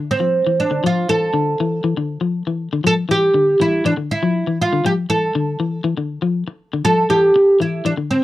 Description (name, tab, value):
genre	afrobeat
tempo	120 BPM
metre	4/4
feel	straight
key	unclear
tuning	A4 = 442 Hz
part	electric guitar at the edge of break-up	arpeggios	0.0-8.2 s	D3 to F3	-20 LUFS	left 4 dB	none
part	oud	melody	0.1-8.2 s	C4 to A4	-16 LUFS	right 1 dB	none
room	light reverb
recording	dry, close 1970s-style studio recording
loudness	-15 LUFS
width	side -15 dB against mid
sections	0.0-8.2 A section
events	none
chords	0.0 Dmadd9